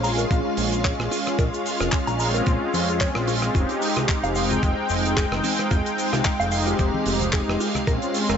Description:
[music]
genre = nu-disco, nu disco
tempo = 111 BPM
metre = 4/4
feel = swing 55% on 16ths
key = F minor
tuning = A4 = 441 Hz
[part]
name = warm analog pad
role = accompaniment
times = 0.0-8.4 s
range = Ab3 to G5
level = -24 LUFS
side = equal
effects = chorus, ping-pong delay
[part]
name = string machine, full ensemble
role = sustained chords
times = 0.0-8.4 s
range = Ab3 to F5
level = -30 LUFS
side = equal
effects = ensemble chorus, sidechain pumping
[part]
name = direct-recorded clean electric guitar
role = riff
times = 0.0-8.4 s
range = F3 to Bb5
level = -30 LUFS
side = right 1 dB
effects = analog chorus, ping-pong delay
[part]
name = fat analog bass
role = bass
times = 0.0-8.4 s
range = F1 to F2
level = -27 LUFS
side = equal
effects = none
[part]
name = damped 70s drum kit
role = drums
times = 0.0-8.4 s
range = handclaps, hi-hat, rim click, shaker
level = -28 LUFS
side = right 2 dB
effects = studio ambience
[part]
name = electronic kick drum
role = drums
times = 0.3-8.0 s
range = none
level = -24 LUFS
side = equal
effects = studio ambience
[part]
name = congas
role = percussion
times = 4.5-7.8 s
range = none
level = -33 LUFS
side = left 2 dB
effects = none
[sound]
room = light reverb, small room reverb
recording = nothing above 7.8 kHz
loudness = -20 LUFS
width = side -8 dB against mid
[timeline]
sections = 0.0-8.4 A section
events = none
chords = 0.0 Bbm9; 3.5 Fm7; 7.6 Bbm9

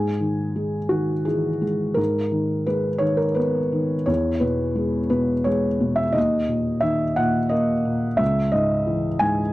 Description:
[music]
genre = neoclassical minimalist piano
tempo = 58 BPM (dotted quarters)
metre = 6/8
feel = rubato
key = G# minor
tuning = A4 = 440 Hz
[part]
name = felt-muted upright piano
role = solo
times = 0.0-9.5 s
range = C#2 to G#5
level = -20 LUFS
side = equal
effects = none
[sound]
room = light reverb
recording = dry, close 1970s-style studio recording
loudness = -20 LUFS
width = side -17 dB against mid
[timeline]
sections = 0.0-2.0 A section; 2.0-9.5 B section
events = none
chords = 0.0 G#5; 2.0 G#madd9; 4.1 E; 6.2 D#5; 8.2 C#madd9

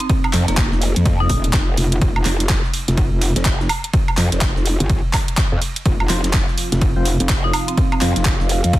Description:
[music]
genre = bass house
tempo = 125 BPM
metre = 4/4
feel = swing 61% on 16ths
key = unclear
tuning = A4 = 440 Hz
[part]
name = marimba with medium hard mallets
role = melody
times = 0.0-1.5, 7.4-8.1 s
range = Bb3 to Eb4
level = -26 LUFS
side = right 1 dB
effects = tape echo
[part]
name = garage drum kit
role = drums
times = 0.0-8.8 s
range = handclaps, hi-hat, woodblock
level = -22 LUFS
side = right 1 dB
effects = overdrive
[part]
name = breakbeat sampler-style drum kit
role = drums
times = 0.1-8.8 s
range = ride cymbal, snare drum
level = -33 LUFS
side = right 4 dB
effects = high-pass filter on cymbals, high-pass filter on snare
[part]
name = electronic kick drum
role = drums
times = 0.1-8.8 s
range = none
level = -19 LUFS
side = equal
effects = overdrive
[part]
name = growl bass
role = bass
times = 0.3-8.8 s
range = F1 to F2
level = -19 LUFS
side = equal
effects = chorus, overdrive, sidechain pumping
[part]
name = metallic wobble bass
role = bass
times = 1.3-7.2 s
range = Eb1 to F2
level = -19 LUFS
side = equal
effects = chorus, sidechain pumping
[part]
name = dark analog pad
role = sustained chords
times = 5.9-8.8 s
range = C4 to F5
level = -28 LUFS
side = right 2 dB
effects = chorus, sidechain pumping
[part]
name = percussive organ stab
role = stabs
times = 6.1-8.2 s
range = F3 to C5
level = -27 LUFS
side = left 3 dB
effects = chorus, sidechain pumping, tape echo
[sound]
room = digital ambience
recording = dense, heavily limited modern master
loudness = -15 LUFS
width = side -16 dB against mid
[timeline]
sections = 0.0-8.8 A section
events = none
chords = 0.0 F5

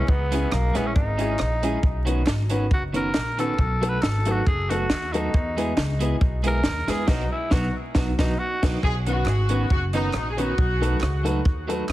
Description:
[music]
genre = ska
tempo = 137 BPM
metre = 4/4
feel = swing 54% on 8ths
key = B major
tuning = A4 = 439 Hz
[part]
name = raspy tenor saxophone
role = melody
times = 0.0-8.6 s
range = A#3 to B4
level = -29 LUFS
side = equal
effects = tape echo
[part]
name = clean electric guitar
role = accompaniment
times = 0.0-11.8 s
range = D#3 to G#4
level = -30 LUFS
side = right 4 dB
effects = tape echo
[part]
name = dark upright piano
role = stabs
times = 0.0-11.8 s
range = B3 to B4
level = -30 LUFS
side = left 3 dB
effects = none
[part]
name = upright bass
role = bass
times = 0.0-11.9 s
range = F#1 to E2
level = -25 LUFS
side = equal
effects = none
[part]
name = compact cocktail drum kit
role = drums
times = 0.1-11.9 s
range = crash cymbal, hi-hat, kick drum, rim click, snare drum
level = -24 LUFS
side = equal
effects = none
[part]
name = group handclap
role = percussion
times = 0.5-11.9 s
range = none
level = -41 LUFS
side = right 5 dB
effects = none
[part]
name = warm horn section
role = melody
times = 8.8-11.3 s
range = D#4 to G#4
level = -28 LUFS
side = equal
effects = tape echo
[sound]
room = light reverb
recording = heavily compressed radio sound, vinyl crackle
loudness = -20 LUFS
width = side -15 dB against mid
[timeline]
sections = 0.0-8.8 A section; 8.8-11.9 B section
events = tenor saxophone solo 0.0-8.8; band accent 7.1-8.8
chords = 0.1 C#m; 1.8 Badd9; 3.6 B7; 5.3 E; 7.1 B; 8.8 Badd9; 10.6 B7

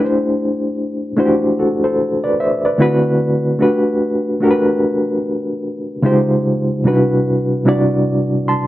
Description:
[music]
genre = R&B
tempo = 74 BPM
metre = 4/4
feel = swing 62% on 16ths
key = G major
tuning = A4 = 437 Hz
[part]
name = reed electric piano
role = solo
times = 0.0-8.7 s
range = C3 to C6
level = -14 LUFS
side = equal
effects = fast tremolo
[sound]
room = moderate studio reverb, RT60 0.8 s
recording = none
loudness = -14 LUFS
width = side -15 dB against mid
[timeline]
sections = 0.0-8.7 A section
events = none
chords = 0.0 D7sus4; 2.8 D13; 3.6 Gmaj9; 6.0 C#maj9#11; 6.9 Cmaj9#11

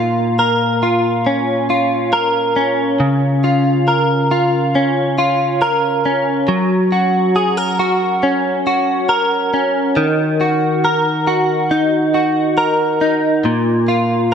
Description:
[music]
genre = pop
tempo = 69 BPM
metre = 4/4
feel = straight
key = Eb minor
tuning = A4 = 440 Hz
[part]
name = direct-recorded clean electric guitar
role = solo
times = 0.0-14.3 s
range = Bb2 to Bb4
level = -13 LUFS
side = equal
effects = analog chorus
[sound]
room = moderate lush hall reverb, RT60 2.9 s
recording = none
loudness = -13 LUFS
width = side -7 dB against mid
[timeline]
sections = 0.0-14.3 A section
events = none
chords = 0.0 Bbm; 3.0 Db6; 6.5 Gb; 10.0 Ebm; 13.4 Bb5

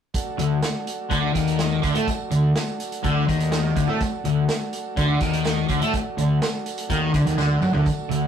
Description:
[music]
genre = psychedelic rock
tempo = 124 BPM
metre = 4/4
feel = straight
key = D major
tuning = A4 = 440 Hz
[part]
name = overdriven combo organ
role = sustained chords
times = 0.1-8.3 s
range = F#3 to A4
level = -32 LUFS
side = right 4 dB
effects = none
[part]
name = vintage drum kit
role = drums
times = 0.1-8.2 s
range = hi-hat, kick drum, snare drum, toms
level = -28 LUFS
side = right 1 dB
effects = none
[part]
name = tambourine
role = percussion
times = 0.1-8.2 s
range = none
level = -42 LUFS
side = right 9 dB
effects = none
[part]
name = fuzz guitar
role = riff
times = 0.4-8.3 s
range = D3 to A3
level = -21 LUFS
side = left 2 dB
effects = distortion, phaser
[part]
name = fuzz fingered electric bass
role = bass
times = 0.4-8.3 s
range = D2 to A2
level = -28 LUFS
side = right 1 dB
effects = overdrive
[sound]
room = moderate studio reverb, RT60 0.6 s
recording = rough rehearsal-room recording, tube saturation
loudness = -20 LUFS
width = side -8 dB against mid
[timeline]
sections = 0.1-8.3 A section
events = drum fill 7.4-7.9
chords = 0.1 D

